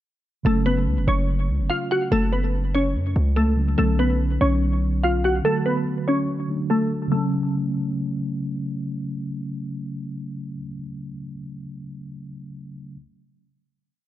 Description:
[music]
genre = hip hop, trap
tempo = 144 BPM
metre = 4/4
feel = half-time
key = F# minor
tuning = A4 = 443 Hz
[part]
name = mellow tine electric piano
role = accompaniment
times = 0.4-13.0 s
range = C#3 to F#4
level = -27 LUFS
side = equal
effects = medium stereo tremolo, low-pass filter
[part]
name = glassy wavetable pluck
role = melody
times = 0.5-8.3 s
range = A3 to F#5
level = -23 LUFS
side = left 1 dB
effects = chorus, low-pass filter, digital delay
[part]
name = hard-hitting 808-style bass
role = bass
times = 0.5-5.4 s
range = F#1 to F#2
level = -21 LUFS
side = equal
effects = none
[sound]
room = light reverb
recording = dark, warm production, low-pass filter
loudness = -20 LUFS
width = side -13 dB against mid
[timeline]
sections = 0.5-7.1 breakdown; 7.1-10.4 final chord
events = filter sweep 0.5-7.1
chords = 0.5 F#m; 3.8 Bmadd9; 5.5 D; 7.1 F#m

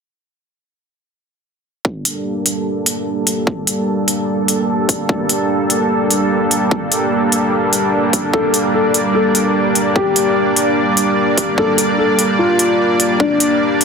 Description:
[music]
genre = heavy wobble dubstep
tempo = 148 BPM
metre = 4/4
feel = swing 53% on 16ths, half-time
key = G minor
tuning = A4 = 440 Hz
[part]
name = supersaw pad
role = sustained chords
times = 1.8-13.8 s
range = G3 to D5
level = -15 LUFS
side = right 1 dB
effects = vintage 12-bit sampler grit, sidechain pumping, low-pass filter
[part]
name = electronic kick drum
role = drums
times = 1.8-13.3 s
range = none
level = -20 LUFS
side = equal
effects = high-pass filter on kick
[part]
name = electronic hi-hat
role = drums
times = 2.1-13.8 s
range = none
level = -17 LUFS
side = equal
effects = none
[part]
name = dark grand piano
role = melody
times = 8.3-13.8 s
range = D4 to A4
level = -17 LUFS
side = left 3 dB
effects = dub echo
[sound]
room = moderate lush hall reverb, RT60 2.1 s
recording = dense, heavily limited modern master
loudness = -13 LUFS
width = side -5 dB against mid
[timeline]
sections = 1.8-13.8 A section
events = filter sweep on supersaw synth 1.8-13.8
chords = 1.8 Gmadd9

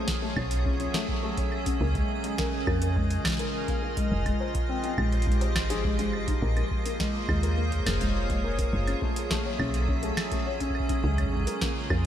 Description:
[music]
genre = IDM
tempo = 104 BPM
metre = 4/4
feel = straight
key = unclear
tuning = A4 = 439 Hz
[part]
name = icy glass pad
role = sustained chords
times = 0.0-12.1 s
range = Db3 to Fb5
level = -32 LUFS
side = right 2 dB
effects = chorus, built-in reverb, vintage 12-bit sampler grit
[part]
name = felt-muted upright piano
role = arpeggios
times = 0.0-11.9 s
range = Ab3 to Db5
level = -33 LUFS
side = left 4 dB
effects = lush chorus, digital delay
[part]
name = booming analog drum machine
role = drums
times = 0.1-12.0 s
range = hi-hat, snare drum, woodblock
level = -34 LUFS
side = right 1 dB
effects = ping-pong delay
[part]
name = electronic kick drum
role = drums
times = 0.1-12.0 s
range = none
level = -31 LUFS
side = equal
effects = none
[part]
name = woody FM bass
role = bass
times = 0.4-12.1 s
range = F1 to F2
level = -28 LUFS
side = equal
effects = none
[sound]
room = moderate lush hall reverb, RT60 2.4 s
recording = bright 1980s-style digital production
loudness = -25 LUFS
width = side -10 dB against mid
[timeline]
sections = 0.0-12.1 A section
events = none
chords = 0.0 Gbm7; 1.8 Db6; 4.1 Fm7; 6.4 Bbm7; 8.7 Gbm7; 11.0 Db6

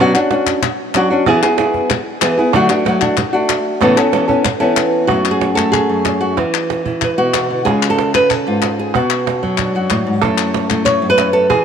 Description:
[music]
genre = flamenco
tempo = 187 BPM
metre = 4/4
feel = straight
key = F# minor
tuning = A4 = 443 Hz
[part]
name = flamenco guitar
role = melody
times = 0.0-11.6 s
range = F#2 to C#5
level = -13 LUFS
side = equal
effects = none
[part]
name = cajon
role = percussion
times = 0.1-11.6 s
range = none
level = -25 LUFS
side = right 9 dB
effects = none
[part]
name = palmas hand claps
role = percussion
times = 0.2-11.6 s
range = none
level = -21 LUFS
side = left 4 dB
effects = none
[sound]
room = moderate plate reverb, RT60 3.3 s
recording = 1960s-style stereo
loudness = -13 LUFS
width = side -7 dB against mid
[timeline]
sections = 0.0-5.1 A section; 5.1-11.6 B section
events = none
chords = 0.0 Bmadd9 (rootless); 1.3 E; 2.5 D; 3.8 Aadd9; 5.1 F#m; 6.4 Esus2; 7.7 C#; 8.9 Bm; 10.2 F#m7

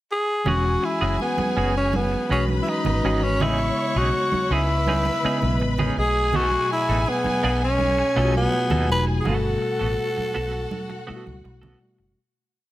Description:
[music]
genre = lush 1970s-style soul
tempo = 82 BPM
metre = 4/4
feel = straight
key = E major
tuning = A4 = 441 Hz
[part]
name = breathy tenor saxophone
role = melody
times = 0.1-11.5 s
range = B3 to B4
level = -23 LUFS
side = equal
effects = none
[part]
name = mellow tine electric piano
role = accompaniment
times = 0.4-12.2 s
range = B2 to D#5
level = -28 LUFS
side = left 1 dB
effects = medium stereo tremolo
[part]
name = clear studio violin section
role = second line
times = 0.5-12.1 s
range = F#4 to C#6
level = -30 LUFS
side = equal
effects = tape echo
[part]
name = semi-hollow electric guitar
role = riff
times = 0.5-12.0 s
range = B3 to A4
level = -31 LUFS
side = right 4 dB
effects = tremolo
[part]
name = vintage muted fingered electric bass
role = bass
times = 0.5-12.1 s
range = E1 to D#2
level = -25 LUFS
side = equal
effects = none
[part]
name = congas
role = percussion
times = 0.5-11.8 s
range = none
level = -31 LUFS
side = right 4 dB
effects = none
[sound]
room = light reverb, small room ambience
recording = none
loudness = -20 LUFS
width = side -15 dB against mid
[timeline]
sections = 0.0-0.5 pickup bar; 0.5-12.2 verse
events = fade-out 9.3-12.2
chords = 0.5 E69; 3.4 Amaj9#11; 6.0 B7; 9.3 Gmaj9

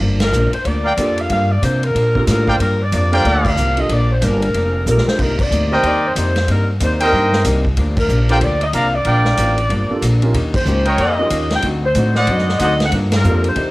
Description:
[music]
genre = jazz, big band swing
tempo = 186 BPM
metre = 4/4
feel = swing 62% on 8ths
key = G minor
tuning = A4 = 439 Hz
[part]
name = archtop guitar, miked and amplified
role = accompaniment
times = 0.0-13.7 s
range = G2 to G4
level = -25 LUFS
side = left 2 dB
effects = cassette tape, plate reverb
[part]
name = upright bass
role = bass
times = 0.0-13.7 s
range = F1 to C3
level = -17 LUFS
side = equal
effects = none
[part]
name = swinging big-band drum kit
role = drums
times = 0.0-13.7 s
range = crash cymbal, hi-hat, kick drum, ride cymbal, snare drum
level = -23 LUFS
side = equal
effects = none
[part]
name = warm saxophone section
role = melody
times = 0.2-13.7 s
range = Bb4 to G5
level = -20 LUFS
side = left 1 dB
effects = cassette tape, plate reverb
[part]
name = clear trumpet section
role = stabs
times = 0.8-3.5, 5.7-12.7 s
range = Bb4 to Bb5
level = -18 LUFS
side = right 1 dB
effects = cassette tape, plate reverb
[part]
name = warm concert grand piano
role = accompaniment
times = 1.0-13.6 s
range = Bb3 to D5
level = -24 LUFS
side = right 2 dB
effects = cassette tape, plate reverb
[sound]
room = light reverb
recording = home recording on cassette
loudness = -13 LUFS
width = side -19 dB against mid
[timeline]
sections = 0.0-13.7 A section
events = band accent 0.2, 3.4, 5.4, 7.9, 10.5, 13.1; drum fill 4.9-5.2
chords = 0.0 Gm7; 5.2 Cm7; 7.8 Gm7; 10.3 Eb7; 11.6 D7b9; 12.9 Gm7

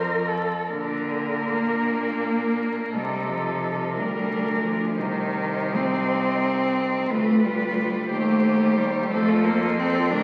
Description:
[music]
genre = classical, lyrical piece for cello ensemble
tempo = 46-62 BPM (dotted quarters)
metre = 6/8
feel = rubato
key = Bb major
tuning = A4 = 439 Hz
[part]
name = rich cello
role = melody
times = 0.0-10.2 s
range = A4 to C5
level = -31 LUFS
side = equal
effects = none
[part]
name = rich cello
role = second line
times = 0.0-10.2 s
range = D4 to A4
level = -35 LUFS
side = equal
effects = none
[part]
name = rich cello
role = accompaniment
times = 0.0-10.2 s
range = D3 to D4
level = -27 LUFS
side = equal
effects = none
[part]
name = rich cello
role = bass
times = 0.0-10.2 s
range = C2 to C3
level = -30 LUFS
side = equal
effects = none
[sound]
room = wet concert hall reverb, RT60 1.8 s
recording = very old 78 rpm record, vinyl crackle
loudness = -24 LUFS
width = mono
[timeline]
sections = 0.7-10.2 A section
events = none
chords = 0.0 F; 0.7 Bb; 3.0 F7/C; 4.0 Bb/D; 5.0 Cm; 7.1 G7/D; 8.1 Cm/Eb; 9.1 F

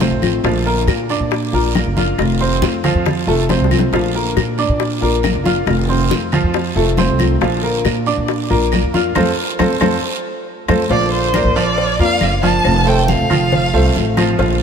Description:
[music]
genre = latin, Cuban son and guajira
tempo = 138 BPM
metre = 4/4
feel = straight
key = Bb major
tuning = A4 = 440 Hz
[part]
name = nylon-string guitar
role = accompaniment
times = 0.0-14.6 s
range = C3 to F4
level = -22 LUFS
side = left 6 dB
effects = none
[part]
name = clear grand piano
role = arpeggios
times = 0.0-14.6 s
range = F3 to F6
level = -19 LUFS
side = right 3 dB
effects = none
[part]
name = upright bass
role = bass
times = 0.0-14.6 s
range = F1 to Bb2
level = -19 LUFS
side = right 1 dB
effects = none
[part]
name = bongos and cowbell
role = percussion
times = 0.0-14.6 s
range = none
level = -24 LUFS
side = left 6 dB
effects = none
[part]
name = congas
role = percussion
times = 0.0-14.6 s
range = none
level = -23 LUFS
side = left 2 dB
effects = none
[part]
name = guiro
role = percussion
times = 0.0-14.6 s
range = none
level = -27 LUFS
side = right 7 dB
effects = none
[part]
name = claves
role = percussion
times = 0.2-14.4 s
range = none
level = -28 LUFS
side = left 4 dB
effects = none
[part]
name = warm violin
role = melody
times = 10.9-14.2 s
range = C5 to A5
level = -18 LUFS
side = right 1 dB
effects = none
[sound]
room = moderate plate reverb, RT60 3.0 s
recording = heard from further back in the room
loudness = -13 LUFS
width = side -7 dB against mid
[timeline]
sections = 0.0-10.9 A section; 10.9-14.6 B section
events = drum fill 3.5-3.9; band accent 9.2-10.9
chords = 0.4 Bb; 2.2 F7; 3.9 Bb; 5.7 F7; 7.4 Bb; 9.2 F; 10.9 Bb; 12.6 F7

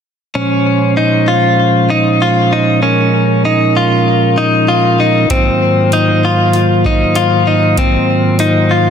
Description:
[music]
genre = dream pop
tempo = 97 BPM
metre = 4/4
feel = straight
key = Bb minor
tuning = A4 = 441 Hz
[part]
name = mellow tonewheel organ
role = sustained chords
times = 0.3-8.9 s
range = Ab2 to C5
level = -13 LUFS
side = right 2 dB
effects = slow rotary speaker
[part]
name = direct-recorded clean electric guitar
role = arpeggios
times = 0.4-8.9 s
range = C4 to F4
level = -12 LUFS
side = left 2 dB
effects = wide subtle chorus, ping-pong delay
[part]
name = booming analog drum machine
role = drums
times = 5.3-8.5 s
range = hi-hat, kick drum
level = -16 LUFS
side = equal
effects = none
[sound]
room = moderate lush hall reverb, RT60 2.0 s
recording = dense, heavily limited modern master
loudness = -9 LUFS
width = side -7 dB against mid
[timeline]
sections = 0.4-8.9 A section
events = none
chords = 0.4 Bbm7; 5.3 Ab13

